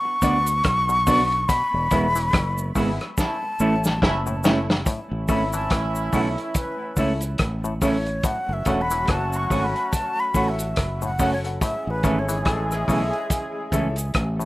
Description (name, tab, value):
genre	roots reggae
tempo	71 BPM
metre	4/4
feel	swing 58% on 16ths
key	A major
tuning	A4 = 438 Hz
part	breathy mellow silver concert flute	melody	0.0-13.6 s	A4 to C#6	-25 LUFS	left 1 dB	tape echo
part	semi-hollow electric guitar	accompaniment	0.1-13.9 s	E3 to F#4	-28 LUFS	right 3 dB	spring reverb, tape echo
part	warm upright piano	stabs	0.2-14.0 s	D4 to F#5	-29 LUFS	left 3 dB	tube saturation
part	fingered electric bass	bass	0.2-14.5 s	E1 to D2	-26 LUFS	equal	none
part	vintage drum kit	drums	0.2-14.4 s	hi-hat, kick drum, rim click, snare drum	-24 LUFS	equal	none
part	cabasa	percussion	0.2-14.5 s	none	-35 LUFS	equal	none
part	muted clav	arpeggios	0.9-14.5 s	A2 to E3	-31 LUFS	left 4 dB	overdrive
part	warm horn section	second line	2.8-14.5 s	E3 to G#4	-30 LUFS	right 1 dB	tape echo
room	light reverb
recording	rough home demo mix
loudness	-20 LUFS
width	side -18 dB against mid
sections	0.0-4.9 A section; 4.9-14.5 B section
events	band accent 1.5-4.9; drum fill 3.2-4.9; flute solo 4.9-14.5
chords	0.0 Bm; 1.5 E; 3.2 A; 8.2 F#m; 11.6 A